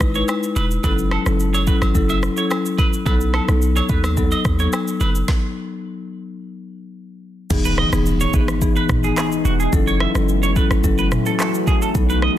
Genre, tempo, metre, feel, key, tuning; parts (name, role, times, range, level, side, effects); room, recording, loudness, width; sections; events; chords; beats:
afrobeats; 108 BPM; 4/4; straight; E major; A4 = 440 Hz
warm 808-style bass; bass; 0.0-12.3 s; E1 to D#2; -20 LUFS; equal
afro-pop drum kit; drums; 0.0-12.4 s; crash cymbal, handclaps, kick drum, rim click, shaker, snare drum, toms; -21 LUFS; equal
marimba with medium mallets; accompaniment; 0.1-12.3 s; E3 to B4; -22 LUFS; left 4 dB
clean electric guitar; riff; 0.2-12.3 s; F#4 to E5; -26 LUFS; right 5 dB; wide subtle chorus, ping-pong delay
agogo bells and woodblock; percussion; 0.3-5.1 s; -31 LUFS; right 2 dB
deep dark ambient pad; sustained chords; 8.6-12.4 s; D#3 to F#4; -27 LUFS; equal; chorus, built-in reverb
impact; sound effects; 7.5-9.7 s; -29 LUFS; right 1 dB
digital ambience; dense, heavily limited modern master; -16 LUFS; side -12 dB against mid
0.0-7.5 A section; 7.5-12.4 B section
stop 5.3-7.5; impact 7.5-9.7
0.0 Emaj7; 0.8 F#m7; 3.1 B7; 5.3 N.C.; 7.5 Emaj7; 9.7 F#m7
0.28 | 0.84 1.40 1.95 2.51 | 3.06 3.62 4.17 4.73 | 5.28 5.84 6.39 6.95 | 7.51 8.06 8.62 9.17 | 9.73 10.28 10.84 11.39 | 11.95